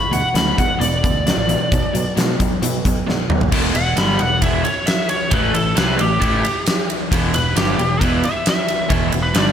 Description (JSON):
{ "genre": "blues rock power trio and southern rock", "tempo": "133 BPM", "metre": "4/4", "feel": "straight", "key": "unclear", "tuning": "A4 = 440 Hz", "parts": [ { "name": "biting lead guitar", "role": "melody", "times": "0.0-9.5 s", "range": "G4 to B5", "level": "-21 LUFS", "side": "equal", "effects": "overdrive" }, { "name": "crunchy overdriven guitar", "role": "riff", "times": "0.0-9.5 s", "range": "E2 to C4", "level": "-21 LUFS", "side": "right 1 dB", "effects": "slapback echo" }, { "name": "picked electric bass", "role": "bass", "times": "0.1-9.5 s", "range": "E1 to B2", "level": "-22 LUFS", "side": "equal", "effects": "none" }, { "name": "huge arena drum kit", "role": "drums", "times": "0.1-9.5 s", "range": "crash cymbal, hi-hat, kick drum, ride cymbal, snare drum, toms", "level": "-19 LUFS", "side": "equal", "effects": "none" } ], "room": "moderate lush hall reverb, RT60 2.1 s", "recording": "big arena sound", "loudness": "-15 LUFS", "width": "side -9 dB against mid", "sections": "0.0-3.5 A section; 3.5-9.5 B section", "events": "drum fill 3.1-3.5; lead electric guitar solo 3.5-9.5", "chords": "0.0 E5; 1.7 B5; 3.5 Em7; 5.3 Am7; 7.1 Em7" }